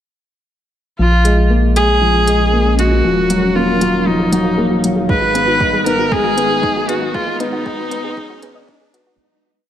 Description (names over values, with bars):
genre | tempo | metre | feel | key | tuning
piano and strings electronica | 117 BPM | 4/4 | straight | G# dorian | A4 = 440 Hz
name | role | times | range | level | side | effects
clear viola | melody | 1.0-8.9 s | D#4 to B4 | -17 LUFS | equal | none
granular cloud pad | sustained chords | 2.0-9.2 s | G#3 to E#5 | -24 LUFS | equal | built-in reverb, sidechain pumping
felt-muted upright piano | riff | 1.0-9.2 s | E#3 to D#4 | -17 LUFS | left 1 dB | none
warm sub bass | bass | 1.0-9.2 s | D#1 to A#1 | -19 LUFS | equal | sidechain pumping
riser | sound effects | 3.6-9.2 s | none | -31 LUFS | equal | none
soft round pluck | arpeggios | 1.1-9.2 s | D#4 to D#5 | -28 LUFS | right 1 dB | none
electronic hi-hat | drums | 1.2-9.0 s | none | -24 LUFS | equal | overdrive
electronic kick drum | drums | 5.1-8.8 s | none | -22 LUFS | equal | overdrive
room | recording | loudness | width
light reverb | high-pass filter | -12 LUFS | side -10 dB against mid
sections
1.0-9.2 build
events
build-up 1.0-9.2; filter sweep on ambient pad 1.0-9.2; fade-out 6.5-9.2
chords
1.0 A#m7; 3.0 D#madd9; 5.1 G#m